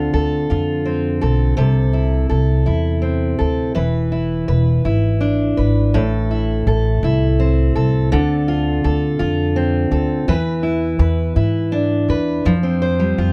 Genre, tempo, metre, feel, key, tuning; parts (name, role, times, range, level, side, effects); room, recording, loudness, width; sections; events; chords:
six-eight pop ballad; 55 BPM (dotted quarters); 6/8; straight; A minor; A4 = 440 Hz
fingerpicked steel-string acoustic guitar; accompaniment; 0.0-13.3 s; A2 to C5; -20 LUFS; equal
upright bass; bass; 0.0-13.3 s; E1 to G#2; -20 LUFS; equal
little or no reverb; dry, close 1970s-style studio recording; -18 LUFS; mono
0.0-12.5 A section
0.0 Dm7; 1.6 Am/C; 3.8 E7; 5.9 Am; 8.1 Dm7; 10.3 E7; 12.5 Fsus2